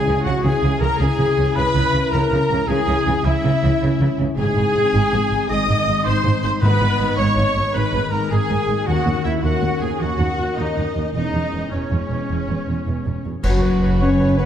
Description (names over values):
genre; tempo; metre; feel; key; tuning
cinematic, heroic adventure film score; 106 BPM (dotted quarters); 12/8; straight; C# dorian; A4 = 438 Hz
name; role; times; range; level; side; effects
warm symphonic violin section; melody; 0.0-14.4 s; F#4 to D#6; -31 LUFS; left 2 dB; none
clear oboe; second line; 0.0-14.5 s; C#4 to D#5; -31 LUFS; right 1 dB; none
dark symphonic violin section; second line; 0.0-14.5 s; C#4 to D#6; -32 LUFS; left 1 dB; none
flute section; second line; 0.0-14.4 s; C#5 to D#6; -30 LUFS; left 1 dB; none
rich symphonic viola section; accompaniment; 0.0-14.5 s; C#4 to D#5; -24 LUFS; equal; none
warm French horn section; sustained chords; 0.0-14.5 s; F#3 to A#4; -26 LUFS; left 3 dB; none
concert harp; arpeggios; 0.0-14.5 s; F#2 to B5; -28 LUFS; left 9 dB; none
warm trumpet section; stabs; 0.0-14.5 s; B3 to D#5; -29 LUFS; equal; none
timpani; percussion; 0.0-0.4, 6.6-7.1 s; G#2 to C#3; -24 LUFS; equal; none
rich symphonic double bass section; bass; 0.1-14.5 s; E1 to D#2; -23 LUFS; right 2 dB; none
warm symphonic cello section; bass; 0.1-14.5 s; D#2 to C#3; -24 LUFS; right 2 dB; none
clear clarinet; second line; 13.4-14.5 s; B4; -32 LUFS; left 1 dB; none
clash cymbals and concert bass drum; percussion; 13.4-14.2 s; none; -21 LUFS; equal; none
room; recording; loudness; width
moderate scoring stage reverb, RT60 1.7 s; dark, warm production; -16 LUFS; side -9 dB against mid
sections
0.0-13.4 A section; 13.4-14.5 B section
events
band accent 13.4-13.8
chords
0.0 C#m; 4.4 G#; 6.6 G#madd9; 8.9 D#m7; 11.1 C#m/E; 13.4 F#sus4